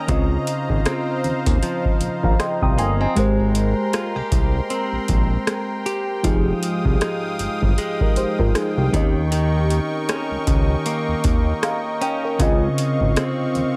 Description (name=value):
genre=contemporary R&B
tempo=78 BPM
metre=4/4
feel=swing 58% on 16ths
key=Ab major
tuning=A4 = 440 Hz
part: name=mellow FM electric piano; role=accompaniment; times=0.0-13.8 s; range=Db3 to Eb6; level=-27 LUFS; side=equal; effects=chorus
part: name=warm analog pad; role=sustained chords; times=0.0-13.8 s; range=Ab3 to Eb6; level=-30 LUFS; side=equal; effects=chorus, sidechain pumping
part: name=direct-recorded clean electric guitar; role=arpeggios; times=0.0-13.8 s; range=Db3 to G4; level=-29 LUFS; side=equal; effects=delay
part: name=fat analog bass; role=bass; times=0.1-13.6 s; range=F1 to Eb2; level=-24 LUFS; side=equal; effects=none
part: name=booming analog drum machine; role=drums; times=0.1-13.8 s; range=hi-hat, kick drum, rim click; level=-24 LUFS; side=equal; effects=none
room=little or no reverb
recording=none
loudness=-21 LUFS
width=mono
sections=0.0-13.8 A section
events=FM electric piano fill 2.0-3.2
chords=0.1 Dbmaj9; 3.2 Abmaj9; 6.2 Fm9; 8.9 Eb7; 12.4 Dbmaj9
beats=| 0.09 0.86 1.62 2.39 | 3.16 3.93 4.70 5.47 | 6.24 7.01 7.78 8.55 | 9.32 10.09 10.86 11.62 | 12.39 13.16